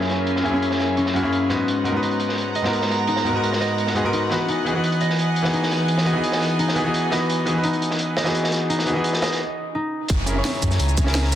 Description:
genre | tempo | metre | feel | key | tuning
liquid drum and bass | 171 BPM | 4/4 | straight | E lydian | A4 = 440 Hz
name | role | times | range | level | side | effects
bright grand piano | accompaniment | 0.0-11.4 s | F#2 to C#5 | -23 LUFS | equal | tape echo
warm chamber string section | sustained chords | 0.0-11.4 s | E3 to A#5 | -26 LUFS | right 1 dB | sidechain pumping, low-pass filter
concert harp | arpeggios | 0.0-11.4 s | C#4 to D#5 | -26 LUFS | left 1 dB | low-pass filter, digital delay
crunchy breakbeat drum kit | drums | 0.0-11.4 s | hi-hat, snare drum | -28 LUFS | equal | high-pass filter on hats, low-pass filter on hats, high-pass filter on snare, low-pass filter on snare, high-pass filter on room, low-pass filter on room
sub bass with octave | bass | 10.1-11.4 s | F#1 to F#2 | -21 LUFS | equal | tube saturation
drum and bass drum kit | drums | 10.1-11.4 s | hi-hat, rim click, shaker, snare drum | -26 LUFS | equal | low-pass filter on hats, low-pass filter on snare, low-pass filter on perc
electronic kick drum | drums | 10.1-11.0 s | none | -21 LUFS | equal | none
downlifter | sound effects | 10.1-11.4 s | none | -32 LUFS | equal | none
room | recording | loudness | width
light reverb, small room ambience | dense, heavily limited modern master | -19 LUFS | side -11 dB against mid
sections
0.0-10.1 A section; 10.1-11.4 B section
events
filter sweep on harp 0.0-10.1; break 9.4-10.1; drop 10.1-11.4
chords
0.0 F#7; 1.7 G#m7; 4.5 Emaj7; 10.1 F#7

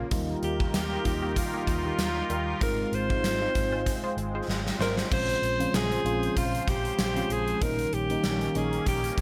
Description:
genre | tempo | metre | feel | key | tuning
1980s-style pop | 96 BPM | 4/4 | swing 55% on 16ths | unclear | A4 = 441 Hz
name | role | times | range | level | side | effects
FM electric piano | accompaniment | 0.0-9.2 s | Eb3 to F4 | -36 LUFS | equal | phaser
sweeping resonant pad | sustained chords | 0.0-9.2 s | Db3 to C5 | -38 LUFS | equal | chorus
funky polysynth comp | stabs | 0.0-5.1 s | Eb3 to C5 | -39 LUFS | equal | chorus, digital delay
vintage muted picked electric bass | bass | 0.0-9.2 s | Ab1 to Eb2 | -36 LUFS | equal | none
gated 80s drum kit | drums | 0.1-9.2 s | crash cymbal, hi-hat, kick drum, snare drum, tambourine | -33 LUFS | equal | gated reverb
bright alto saxophone | melody | 0.4-9.2 s | F4 to C5 | -32 LUFS | equal | none
room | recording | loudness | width
light reverb, studio reverb | none | -28 LUFS | mono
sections
0.0-5.1 A section; 5.1-9.2 B section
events
drum fill 4.5-5.1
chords
0.1 Ebadd9; 2.6 Ab6; 5.1 Dbmaj7/Bb; 7.6 Eb7/Bb

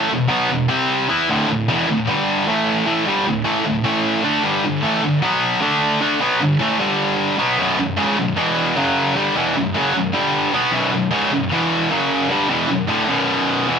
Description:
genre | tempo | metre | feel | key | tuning
metal | 152 BPM | 4/4 | straight | B minor from 7.6 s | A4 = 440 Hz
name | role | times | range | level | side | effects
heavy high-gain guitar | solo | 0.0-13.8 s | B1 to E4 | -16 LUFS | equal | distortion
room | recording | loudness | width
moderate studio reverb, RT60 0.6 s | band playing live in one room | -16 LUFS | side -6 dB against mid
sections
0.0-7.6 A section; 7.6-13.8 B section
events
none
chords
0.0 E5; 0.7 C5; 1.1 E5; 1.3 D5; 2.1 G5; 2.5 A5; 2.9 D5; 3.8 A5; 4.2 D5; 4.4 G5; 5.2 B5; 5.6 D5; 6.0 G5; 7.6 B5; 8.4 E5; 8.8 F#5; 9.2 Bm; 10.1 G5; 10.5 B5; 11.5 E5; 11.9 F#5; 12.3 Bm

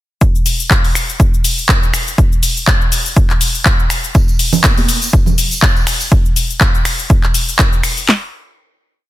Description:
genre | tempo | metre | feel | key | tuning
house | 122 BPM | 4/4 | swing 56% on 16ths | none | none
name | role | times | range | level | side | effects
house drum kit | drums | 0.2-8.2 s | handclaps, kick drum, snare drum | -12 LUFS | equal | none
house drum kit | drums | 0.2-8.1 s | finger snaps, handclaps, hi-hat, shaker | -15 LUFS | left 2 dB | sidechain pumping on perc, sidechain pumping on hats
tambourine and congas | percussion | 4.1-6.1 s | none | -19 LUFS | right 6 dB | sidechain pumping on perc
room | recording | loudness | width
little or no reverb | dense, heavily limited modern master | -11 LUFS | side -15 dB against mid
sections
0.2-8.1 drop; 8.1-9.1 final hit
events
drop 0.2-8.1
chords
none

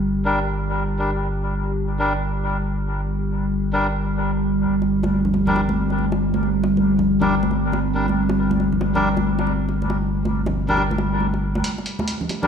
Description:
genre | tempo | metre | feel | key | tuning
deep dubstep | 138 BPM | 4/4 | swing 61% on 16ths, half-time | G minor | A4 = 440 Hz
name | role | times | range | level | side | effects
deep dark ambient pad | sustained chords | 0.0-12.5 s | G3 to G4 | -22 LUFS | equal | chorus, built-in reverb
saturated sub bass | bass | 0.0-11.6 s | G1 | -24 LUFS | equal | none
melodica | stabs | 0.3-12.5 s | G3 to Bb4 | -25 LUFS | left 1 dB | low-pass filter, dub echo
bongos and congas | percussion | 4.8-12.5 s | none | -25 LUFS | equal | dub echo
electronic hi-hat | drums | 11.6-12.4 s | none | -29 LUFS | right 1 dB | overdrive, high-pass filter on hats, studio reverb, high-pass filter on snare
riser | sound effects | 11.9-12.5 s | none | -46 LUFS | right 1 dB | none
room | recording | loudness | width
moderate echo chamber reverb, RT60 2.1 s | played on a big sound system in a bare room, stone room reverb | -19 LUFS | side -7 dB against mid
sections
0.0-11.6 A section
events
none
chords
none

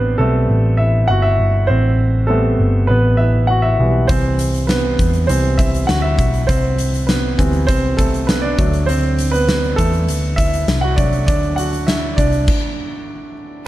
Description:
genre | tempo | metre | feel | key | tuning
piano-driven pop | 100 BPM | 4/4 | straight | D mixolydian | A4 = 440 Hz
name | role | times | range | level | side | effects
clear baby grand piano | accompaniment | 0.0-13.7 s | C3 to F#5 | -18 LUFS | right 1 dB | none
hollow-body short-scale picked electric bass | bass | 0.0-12.5 s | G1 to E2 | -17 LUFS | equal | none
huge arena drum kit | drums | 4.1-12.6 s | crash cymbal, hi-hat, kick drum, snare drum | -19 LUFS | equal | none
room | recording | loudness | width
light reverb, small room ambience | dark, warm production, lossy compression artefacts | -13 LUFS | side -15 dB against mid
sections
0.0-13.7 A section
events
grand piano solo 0.0-13.7; stop 12.5-13.7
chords
0.0 Am7; 4.1 C; 8.6 D

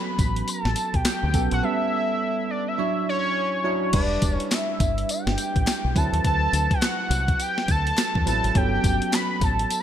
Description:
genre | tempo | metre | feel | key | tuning
R&B, new jack swing | 104 BPM | 4/4 | swing 61% on 16ths | E dorian | A4 = 441 Hz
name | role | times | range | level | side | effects
fat analog lead | melody | 0.0-9.8 s | C#5 to B5 | -26 LUFS | left 1 dB | chorus
bell-like tine electric piano | accompaniment | 0.0-9.8 s | F#3 to C#5 | -28 LUFS | right 4 dB | wide subtle chorus
deep dub fingered electric bass | bass | 0.2-9.6 s | E1 to E2 | -25 LUFS | equal | none
clean 12-bit digital drum machine | drums | 0.2-9.8 s | crash cymbal, handclaps, hi-hat, kick drum, snare drum, tambourine | -24 LUFS | equal | gated reverb
group handclap | percussion | 1.1-9.3 s | none | -42 LUFS | left 3 dB | none
room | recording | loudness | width
light reverb | bright 1980s-style digital production | -21 LUFS | side -10 dB against mid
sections
0.0-3.9 A section; 3.9-9.8 A section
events
silent gap 1.6-3.9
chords
0.0 Gmaj9#11; 1.6 A9; 2.8 Dmaj9; 3.9 Em7; 6.0 D13; 8.6 Gmaj9#11

